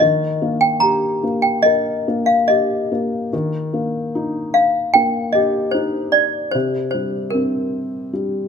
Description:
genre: children's music, lullaby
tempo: 74 BPM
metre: 4/4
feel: rubato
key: Eb major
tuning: A4 = 440 Hz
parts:
  - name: toy piano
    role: melody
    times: 0.0-8.5 s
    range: Bb4 to Bb5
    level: -17 LUFS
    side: equal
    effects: none
  - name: felt-muted upright piano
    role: accompaniment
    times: 0.0-8.5 s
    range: C3 to Bb4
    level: -21 LUFS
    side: left 1 dB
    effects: none
room: moderate recital hall reverb, RT60 1.5 s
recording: close, detailed microphones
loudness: -16 LUFS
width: side -6 dB against mid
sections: 0.0-3.3 A section; 3.3-8.5 B section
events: felt piano fill 8.1-8.5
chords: 0.0 Eb; 6.5 C5

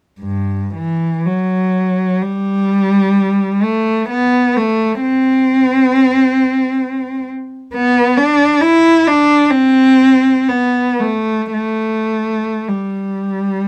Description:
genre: classical, free, expressive piece for unaccompanied cello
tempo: 63 BPM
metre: 4/4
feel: uneven beats, rubato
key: G major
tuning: A4 = 440 Hz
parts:
  - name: rich cello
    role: solo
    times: 0.2-13.7 s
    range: G2 to E4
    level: -14 LUFS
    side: equal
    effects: none
room: light reverb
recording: close, detailed microphones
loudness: -14 LUFS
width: mono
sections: 0.2-13.7 A section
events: none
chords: none

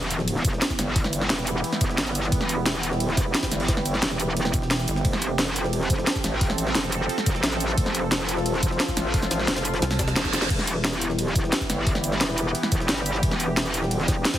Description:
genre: dark technical drum and bass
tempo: 176 BPM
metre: 4/4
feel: straight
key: E phrygian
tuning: A4 = 440 Hz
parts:
  - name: sweeping resonant pad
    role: sustained chords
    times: 0.0-14.4 s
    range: E3 to A4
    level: -29 LUFS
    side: right 1 dB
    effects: chorus, sidechain pumping
  - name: metallic wobble bass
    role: bass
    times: 0.0-14.2 s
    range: E1 to A1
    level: -26 LUFS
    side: equal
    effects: chorus, sidechain pumping
  - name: drum and bass drum kit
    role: drums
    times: 0.0-14.4 s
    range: cabasa, crash cymbal, hi-hat, snare drum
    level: -26 LUFS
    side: equal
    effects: overdrive
  - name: impact and reverse cymbal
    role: sound effects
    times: 0.1-1.0, 9.9-10.5 s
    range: none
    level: -33 LUFS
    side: right 3 dB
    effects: none
  - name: jungle sampler-style drum kit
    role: drums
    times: 0.1-14.4 s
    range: hi-hat, ride cymbal, snare drum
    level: -34 LUFS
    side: equal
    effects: none
  - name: electronic kick drum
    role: drums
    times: 0.4-14.4 s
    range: none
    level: -25 LUFS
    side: equal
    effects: overdrive
  - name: pulsing pluck wobble bass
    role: bass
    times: 4.5-5.0, 9.8-10.1 s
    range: E1 to C2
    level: -25 LUFS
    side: equal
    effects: chorus
room: light reverb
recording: heavily compressed radio sound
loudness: -21 LUFS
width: side -12 dB against mid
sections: 0.0-14.4 A section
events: impact 0.0-1.0; reverse cymbal 9.9-10.5; drum fill 10.2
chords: 0.0 Em; 5.0 F; 10.5 Em

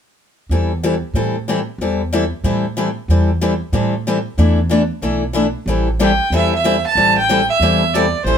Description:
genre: acoustic string swing (jazz manouche)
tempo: 186 BPM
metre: 4/4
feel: swing 60% on 8ths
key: A minor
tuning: A4 = 442 Hz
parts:
  - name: picked steel-string acoustic guitar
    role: accompaniment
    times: 0.5-8.4 s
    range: E3 to A4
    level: -18 LUFS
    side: left 2 dB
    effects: none
  - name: upright bass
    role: bass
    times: 0.5-8.4 s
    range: A1 to A2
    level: -19 LUFS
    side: right 1 dB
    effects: none
  - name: warm violin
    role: melody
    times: 6.0-8.4 s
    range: C5 to A5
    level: -15 LUFS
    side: right 3 dB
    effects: none
room: moderate studio reverb, RT60 0.5 s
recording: band playing live in one room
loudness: -14 LUFS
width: side -8 dB against mid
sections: 0.5-5.7 A section; 5.7-8.4 B section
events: none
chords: 0.5 Am7/E; 4.4 E7sus4; 5.7 Am7

